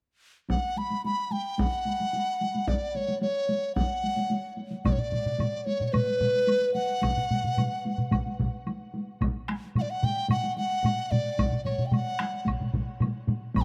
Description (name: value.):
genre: japanese traditional, taiko drum ensemble.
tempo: 110 BPM.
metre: 4/4.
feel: straight.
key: F# miyako bushi.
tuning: A4 = 440 Hz.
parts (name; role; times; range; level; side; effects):
mellow hollow large dizi; melody; 0.5-13.6 s; B4 to B5; -31 LUFS; equal; none.
solo taiko drums; percussion; 0.5-13.6 s; none; -34 LUFS; equal; none.
taiko ensemble; percussion; 0.5-13.6 s; none; -35 LUFS; equal; none.
solo taiko drums; percussion; 4.8-13.6 s; none; -33 LUFS; equal; none.
taiko ensemble; percussion; 4.9-13.6 s; none; -35 LUFS; equal; none.
woodblock; percussion; 4.9-13.6 s; none; -42 LUFS; equal; none.
room: moderate huge ambient reverb, RT60 5.0 s.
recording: none.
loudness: -28 LUFS.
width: mono.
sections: 0.5-4.9 A section; 4.9-13.6 B section.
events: none.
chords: none.